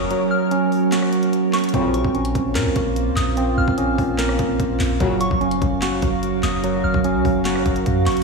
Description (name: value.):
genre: hip hop, trap.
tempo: 147 BPM.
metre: 4/4.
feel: half-time.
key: Bb minor.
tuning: A4 = 440 Hz.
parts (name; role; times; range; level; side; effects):
soft synth bell; second line; 0.0-8.2 s; Db6 to F6; -28 LUFS; left 2 dB; chorus, analog delay.
felt-muted upright piano; accompaniment; 0.0-1.8 s; Gb3 to Db4; -34 LUFS; left 6 dB; none.
glassy FM pad; sustained chords; 0.0-8.2 s; Gb3 to F5; -24 LUFS; equal; ensemble chorus, built-in reverb.
tine electric piano; arpeggios; 0.0-8.2 s; Gb3 to Bb4; -21 LUFS; right 4 dB; medium stereo tremolo, low-pass filter, analog delay.
clean 808-style bass; bass; 0.0-8.2 s; Gb1 to Bb2; -24 LUFS; equal; none.
trap drum kit; drums; 0.1-8.2 s; handclaps, hi-hat, kick drum, rim click, snare drum; -26 LUFS; equal; none.
dark brass ensemble; stabs; 1.7-2.0, 5.0-5.3 s; F2 to Gb3; -27 LUFS; left 5 dB; none.
room: moderate lush hall reverb, RT60 2.0 s, digital ambience.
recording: dreamy mix soaked in reverb, small room reverb.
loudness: -17 LUFS.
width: side -3 dB against mid.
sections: 0.0-1.7 A section; 1.7-8.2 A section.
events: kick muted 0.1-1.7.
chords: 0.0 Gb; 1.7 Bbmadd9; 5.0 Gb.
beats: | 0.11 0.51 0.92 1.33 | 1.74 2.15 2.56 2.96 | 3.37 3.78 4.19 4.60 | 5.00 5.41 5.82 6.23 | 6.64 7.04 7.45 7.86.